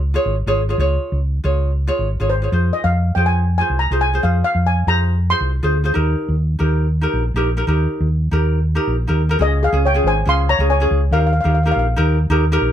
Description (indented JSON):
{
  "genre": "calypso",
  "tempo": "139 BPM",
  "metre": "4/4",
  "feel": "straight",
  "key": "unclear",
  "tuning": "A4 = 440 Hz",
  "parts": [
    { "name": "hollow-body short-scale fingered electric bass", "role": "bass", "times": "0.0-12.7 s", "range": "Ab1 to F2", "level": "-17 LUFS", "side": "equal", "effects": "none" },
    { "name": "ukulele", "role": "accompaniment", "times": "0.1-12.7 s", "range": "Db4 to Db5", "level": "-21 LUFS", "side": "equal", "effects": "none" },
    { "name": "steel pan", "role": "melody", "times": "2.3-5.7, 9.4-11.9 s", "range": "Ab4 to C6", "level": "-19 LUFS", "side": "left 1 dB", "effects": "none" }
  ],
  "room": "light reverb",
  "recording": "none",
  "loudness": "-15 LUFS",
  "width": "side -10 dB against mid",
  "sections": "0.0-9.4 A section; 9.4-12.7 B section",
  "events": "none",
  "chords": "0.0 Db; 2.5 Fm; 6.0 Eb; 9.4 Db; 11.1 Eb"
}